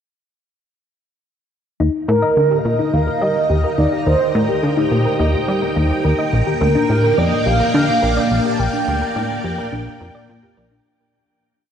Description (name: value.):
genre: ambient, sequencer-driven space music.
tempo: 106 BPM.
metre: 4/4.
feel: straight.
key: Eb major.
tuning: A4 = 440 Hz.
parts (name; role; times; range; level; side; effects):
string machine, full ensemble; sustained chords; 1.8-10.9 s; Bb3 to Bb5; -24 LUFS; equal; ensemble chorus, shimmer reverb.
thumb-piano-like synth pluck; arpeggios; 1.8-10.8 s; D4 to Eb5; -22 LUFS; left 2 dB; chorus, auto-pan, shimmer reverb, tape echo.
plucky analog bass; riff; 1.8-10.8 s; Bb1 to G3; -19 LUFS; equal; tape echo.
wind-like tuned noise texture; texture; 3.0-10.9 s; G5; -30 LUFS; right 4 dB; built-in reverb, wide subtle chorus, shimmer reverb.
mellow horn-like synth lead; melody; 2.1-10.3 s; G4 to A5; -19 LUFS; right 1 dB; analog chorus, shimmer reverb, tape echo.
room: wet huge ambient reverb, RT60 8.4 s.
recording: dreamy mix soaked in reverb.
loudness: -15 LUFS.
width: side -8 dB against mid.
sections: 1.8-10.9 A section.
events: fade-in on string machine 1.8-10.9; fade-in on synth texture 1.8-10.9; filter sweep on synth arpeggio sound 1.8-10.9; fade-out 7.8-10.9.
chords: 1.8 Eb; 6.3 Bb6.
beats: | 1.80 2.37 2.93 3.50 | 4.07 4.63 5.20 5.76 | 6.33 6.89 7.46 8.03 | 8.59 9.16 9.73 10.29.